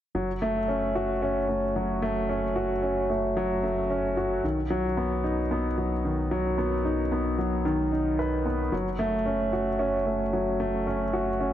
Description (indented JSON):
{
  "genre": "piano and strings electronica",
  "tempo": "112 BPM",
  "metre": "4/4",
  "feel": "straight",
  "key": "F# dorian",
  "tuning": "A4 = 440 Hz",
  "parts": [
    { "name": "warm upright piano", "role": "riff", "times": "0.1-11.5 s", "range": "D#3 to B4", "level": "-25 LUFS", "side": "equal", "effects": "tape echo" },
    { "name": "round analog bass", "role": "bass", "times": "0.1-11.5 s", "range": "F#1 to B1", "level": "-33 LUFS", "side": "equal", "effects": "none" }
  ],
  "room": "moderate lush hall reverb, RT60 2.6 s",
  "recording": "none",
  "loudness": "-24 LUFS",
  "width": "side -11 dB against mid",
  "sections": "0.2-11.5 A section",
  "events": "none",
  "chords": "0.2 F#m; 4.4 B; 8.7 F#m",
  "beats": "| 0.15 0.69 1.22 1.76 | 2.29 2.83 3.37 3.90 | 4.44 4.97 5.51 6.04 | 6.58 7.12 7.65 8.19 | 8.72 9.26 9.79 10.33 | 10.87 11.40"
}